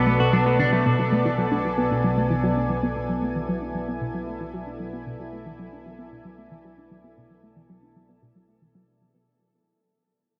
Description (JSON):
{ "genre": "ambient, sequencer-driven space music", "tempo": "114 BPM", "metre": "4/4", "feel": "straight", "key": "B dorian", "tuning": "A4 = 442 Hz", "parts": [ { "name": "lush unison pad", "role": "sustained chords", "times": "0.0-9.3 s", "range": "B2 to G#5", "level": "-27 LUFS", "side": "equal", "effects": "chorus, shimmer reverb" }, { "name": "clean electric guitar", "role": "arpeggios", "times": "0.0-0.8 s", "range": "A3 to F#4", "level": "-31 LUFS", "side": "equal", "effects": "delay, shimmer reverb" }, { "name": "tight sequenced synth", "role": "riff", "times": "0.0-9.2 s", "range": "B2 to D4", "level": "-29 LUFS", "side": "equal", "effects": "chorus, delay, shimmer reverb" }, { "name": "warm sub bass", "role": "bass", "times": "0.0-9.2 s", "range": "B1", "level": "-44 LUFS", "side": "equal", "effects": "none" }, { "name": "bubbling stepped-filter texture", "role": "texture", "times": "0.0-9.3 s", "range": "A4", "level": "-35 LUFS", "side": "equal", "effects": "chorus, built-in reverb, shimmer reverb" } ], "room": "wet huge ambient reverb, RT60 7.7 s", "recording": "worn, warbling old tape, cassette tape, warbly pitch drift", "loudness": "-24 LUFS", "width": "mono", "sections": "0.0-9.3 A section", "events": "fade-out on sub bass 0.0-9.3; fade-out 0.0-9.3; filter sweep on synth arpeggio sound 0.0-9.3", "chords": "0.0 Bm" }